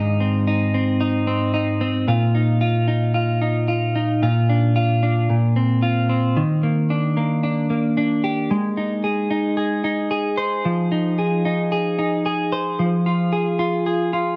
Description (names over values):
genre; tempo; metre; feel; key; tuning
dream pop; 112 BPM; 4/4; straight; Bb mixolydian; A4 = 437 Hz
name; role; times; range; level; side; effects
clean electric guitar; solo; 0.0-14.4 s; Ab2 to C5; -20 LUFS; equal; lush chorus
room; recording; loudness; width
moderate plate reverb, RT60 2.5 s; dark, warm production; -20 LUFS; mono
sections
0.0-6.4 A section; 6.4-14.4 B section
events
none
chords
0.0 Ab; 2.1 Bbsus4; 4.2 Bb; 5.3 Bbsus2; 6.4 Ebmaj7; 8.5 Ab; 10.6 Fm7; 12.8 Fm